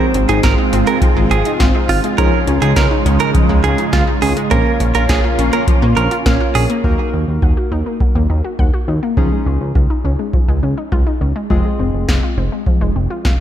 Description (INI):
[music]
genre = synth-pop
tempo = 103 BPM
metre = 4/4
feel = straight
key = unclear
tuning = A4 = 440 Hz
[part]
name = direct-recorded clean electric guitar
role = second line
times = 0.0-6.7 s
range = F4 to Bb4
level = -20 LUFS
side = right 6 dB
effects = spring reverb, tape echo
[part]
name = warm analog keys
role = accompaniment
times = 0.0-13.4 s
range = Ab3 to Db5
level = -23 LUFS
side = right 1 dB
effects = chorus
[part]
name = lush unison pad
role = sustained chords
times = 0.0-6.8 s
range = Db3 to F4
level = -20 LUFS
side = right 1 dB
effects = chorus, phaser
[part]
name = wide unison pluck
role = arpeggios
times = 0.1-13.4 s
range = F3 to Gb5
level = -21 LUFS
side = left 2 dB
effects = tape echo
[part]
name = chorused synth bass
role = bass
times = 0.1-13.4 s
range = F1 to Eb2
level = -17 LUFS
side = equal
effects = none
[part]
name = electro analog drum machine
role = drums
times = 0.1-13.4 s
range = hi-hat, kick drum, snare drum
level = -16 LUFS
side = equal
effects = none
[sound]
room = light reverb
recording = dark, warm production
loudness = -12 LUFS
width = side -10 dB against mid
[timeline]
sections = 0.0-6.8 A section; 6.8-13.4 B section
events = none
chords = 0.0 Ab6; 2.2 Dbadd9; 4.5 Bbm; 6.8 Ebm; 9.2 Dbadd9; 11.5 Fm